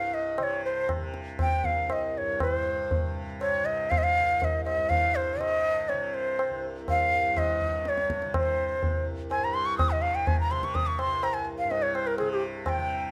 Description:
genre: indian classical, Hindustani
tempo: 122 BPM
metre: 3/4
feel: straight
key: C raga bhairavi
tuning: A4 = 445 Hz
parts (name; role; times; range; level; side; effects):
- breathy bright bansuri; melody; 0.0-13.1 s; G4 to Eb6; -29 LUFS; equal; none
- tanpura; drone; 0.0-13.1 s; C2 to C3; -40 LUFS; equal; none
- tabla; percussion; 0.4-12.8 s; none; -33 LUFS; equal; none
room: moderate recital hall reverb, RT60 1.3 s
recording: close, detailed microphones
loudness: -27 LUFS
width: mono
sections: 0.0-2.4 A section; 2.4-13.1 B section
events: speeding up 0.0-13.1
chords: none

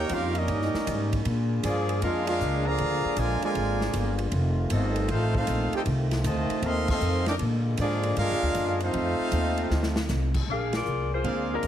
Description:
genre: jazz, big band swing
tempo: 156 BPM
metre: 4/4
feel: swing 66% on 8ths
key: Bb major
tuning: A4 = 440 Hz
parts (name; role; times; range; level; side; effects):
- bright trumpet section; melody; 0.0-10.1 s; Bb3 to D6; -30 LUFS; left 1 dB; none
- warm trombone section; second line; 0.0-10.1 s; C3 to Ab4; -31 LUFS; right 2 dB; none
- mellow trombone section; sustained chords; 0.0-10.5 s; D3 to Ab4; -34 LUFS; left 1 dB; none
- upright bass; bass; 0.0-11.7 s; F1 to Bb2; -28 LUFS; equal; none
- swinging big-band drum kit; drums; 0.1-11.7 s; crash cymbal, hi-hat, kick drum, ride cymbal, snare drum; -35 LUFS; equal; none
- dark saxophone section; melody; 10.5-11.7 s; Ab3 to F5; -28 LUFS; left 4 dB; none
- clear baby grand piano; accompaniment; 11.2-11.7 s; Ab3 to F4; -31 LUFS; right 5 dB; none
- warm trumpet section; stabs; 11.2-11.7 s; Ab4 to F5; -34 LUFS; right 1 dB; none
room: light reverb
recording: heavily compressed radio sound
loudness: -24 LUFS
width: side -10 dB against mid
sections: 0.0-10.5 A section; 10.5-11.7 B section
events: band accent 6.8, 10.7; drum fill 9.7-10.1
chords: 0.0 Eb7; 1.2 Bb7; 4.3 F7; 7.4 Bb7; 8.9 F7; 10.5 Bb7

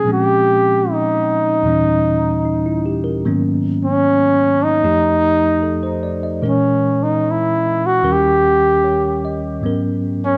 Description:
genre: jazz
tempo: 75 BPM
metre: 4/4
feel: swing 68% on 8ths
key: G# minor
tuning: A4 = 441 Hz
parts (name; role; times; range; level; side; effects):
- warm flugelhorn; melody; 0.0-10.4 s; C#4 to G4; -18 LUFS; equal; tape echo
- bell-like tine electric piano; accompaniment; 0.0-10.4 s; D#2 to Eb5; -21 LUFS; equal; none
room: moderate spring reverb, RT60 1.5 s, small room reverb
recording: cassette tape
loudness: -16 LUFS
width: mono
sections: 0.0-9.6 A section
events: none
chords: 0.1 A#m9; 1.6 D#7b9; 3.2 G#m11; 4.8 F7; 6.4 A#m7b5; 8.0 D#7; 9.6 G#m11

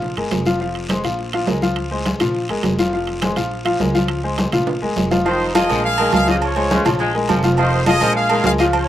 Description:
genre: latin, salsa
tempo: 207 BPM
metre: 4/4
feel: straight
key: unclear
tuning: A4 = 440 Hz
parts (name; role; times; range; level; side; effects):
- bright upright piano; accompaniment; 0.0-8.8 s; F3 to F5; -20 LUFS; left 2 dB; slapback echo
- upright bass; bass; 0.0-8.9 s; F1 to Db2; -24 LUFS; right 1 dB; none
- congas; percussion; 0.0-8.9 s; none; -23 LUFS; equal; none
- guiro; percussion; 0.0-8.9 s; none; -32 LUFS; left 2 dB; none
- timbales and agogo bells; percussion; 0.2-8.9 s; none; -24 LUFS; right 8 dB; none
- bright saxophone section; second line; 5.2-8.8 s; Db3 to Ab3; -25 LUFS; equal; slapback echo
- bright trumpet section; melody; 5.3-8.9 s; Eb4 to F5; -20 LUFS; equal; none
room: little or no reverb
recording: recorded outdoors, with no room sound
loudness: -16 LUFS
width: side -12 dB against mid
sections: 0.0-5.3 A section; 5.3-8.9 B section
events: drum fill 4.7-5.3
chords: 0.0 Bb5; 0.6 Fm; 1.2 Bbm7; 1.8 Dbmaj7; 2.4 Bb5; 2.9 Fm; 3.5 Bbm7; 4.1 Dbmaj7; 4.7 Bb5; 5.3 Fm7; 5.8 Bbm7; 6.4 Dbmaj7; 7.0 Bb5; 8.2 Bbm7

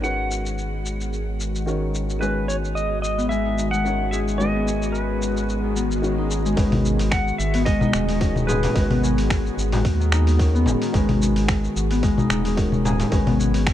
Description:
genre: organic downtempo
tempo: 110 BPM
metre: 4/4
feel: swing 55% on 16ths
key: G# minor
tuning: A4 = 440 Hz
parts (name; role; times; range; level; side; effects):
- clean lap steel guitar; melody; 0.0-9.3 s; B4 to F#5; -28 LUFS; right 1 dB; digital delay
- felt-muted upright piano; accompaniment; 0.0-13.7 s; D#3 to B4; -31 LUFS; equal; sidechain pumping, digital delay
- airy breathy pad; sustained chords; 0.0-13.7 s; D#3 to G#4; -29 LUFS; right 1 dB; chorus, sidechain pumping
- Celtic harp; arpeggios; 0.0-13.7 s; D#3 to G#4; -25 LUFS; left 3 dB; digital delay
- round analog bass; bass; 0.0-13.7 s; D#1 to D#2; -24 LUFS; equal; sidechain pumping
- dusty soul sampler-style drum kit; drums; 0.0-13.7 s; congas, finger snaps, hi-hat, shaker; -27 LUFS; left 2 dB; none
- swell; sound effects; 5.7-6.6 s; none; -36 LUFS; right 4 dB; none
- electronic kick drum; drums; 6.6-13.7 s; none; -23 LUFS; equal; none
- frame drum; percussion; 8.5-13.1 s; none; -27 LUFS; equal; none
room: light reverb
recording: dark, warm production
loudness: -19 LUFS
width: side -12 dB against mid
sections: 0.0-6.6 A section; 6.6-13.7 B section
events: swell 5.7-6.6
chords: 0.0 G#m7

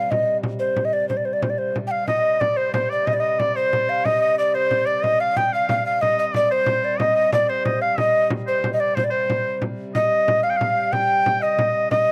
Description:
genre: medieval dance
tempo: 122 BPM (dotted quarters)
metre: 6/8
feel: straight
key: C minor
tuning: A4 = 440 Hz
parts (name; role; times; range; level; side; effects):
- breathy mellow tenor recorder; melody; 0.0-12.1 s; C5 to G5; -22 LUFS; equal; none
- pedal harmonium; drone; 0.0-12.1 s; C3 to G3; -35 LUFS; equal; none
- frame drum; percussion; 0.1-12.1 s; none; -30 LUFS; equal; none
- clear shawm; second line; 1.9-12.1 s; C5 to G5; -28 LUFS; equal; slapback echo
room: little or no reverb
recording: recorded outdoors, with no room sound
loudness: -21 LUFS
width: mono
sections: 0.0-2.1 A section; 2.1-9.9 A section; 9.9-12.1 B section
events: none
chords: none

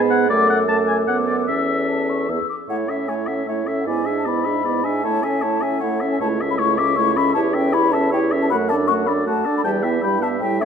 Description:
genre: quick classical-period movement for wind quintet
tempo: 155 BPM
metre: 3/4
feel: rubato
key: A major, D major from 7.4 s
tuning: A4 = 440 Hz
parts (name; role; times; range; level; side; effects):
- mellow hollow concert flute; melody; 0.0-10.7 s; E5 to E6; -23 LUFS; left 7 dB; none
- clear clarinet; accompaniment; 0.0-10.7 s; C#4 to A4; -25 LUFS; right 8 dB; none
- dark French horn; accompaniment; 0.0-10.7 s; G3 to E4; -24 LUFS; right 1 dB; none
- mellow bassoon; bass; 0.0-10.7 s; C#2 to A2; -24 LUFS; right 2 dB; none
- warm oboe; second line; 0.1-10.7 s; C#5 to A5; -25 LUFS; left 3 dB; none
room: moderate concert hall reverb, RT60 2.0 s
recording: dark, warm production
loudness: -17 LUFS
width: side -7 dB against mid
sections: 0.0-2.7 A section; 2.7-10.7 B section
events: none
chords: 0.3 D/F#; 1.1 Bm7/F#; 1.5 A/E; 2.3 E; 2.7 A; 3.9 E7/G#; 5.0 A; 6.2 A/C#; 7.4 A7/E; 8.5 D/F#; 9.6 Em; 10.0 Em/G

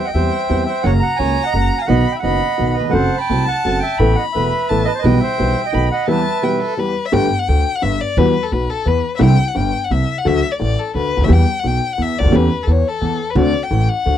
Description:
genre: tango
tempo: 172 BPM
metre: 3/4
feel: rubato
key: E harmonic minor, G major from 7.1 s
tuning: A4 = 438 Hz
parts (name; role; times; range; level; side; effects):
- bandoneon; melody; 0.0-6.7 s; B4 to B5; -19 LUFS; right 5 dB; none
- warm violin; second line; 0.0-14.2 s; A4 to B5; -22 LUFS; left 6 dB; none
- clear upright piano; accompaniment; 0.1-14.2 s; E1 to A4; -19 LUFS; left 1 dB; none
- upright bass; bass; 0.1-14.2 s; E1 to E2; -17 LUFS; right 1 dB; none
room: light reverb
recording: dry, close 1970s-style studio recording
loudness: -14 LUFS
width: side -10 dB against mid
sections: 0.0-7.1 A section; 7.1-14.2 B section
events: break 6.1-7.1; violin solo 7.1-14.2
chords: 0.0 C/E; 0.8 F#; 1.9 B; 2.9 F#dim; 4.0 Asus2; 5.0 Em/B; 5.7 B7; 6.1 Em; 7.1 Gadd9; 8.2 Emadd9; 9.2 Cadd9; 10.2 D; 11.3 Em; 12.3 A7/E; 13.4 D7

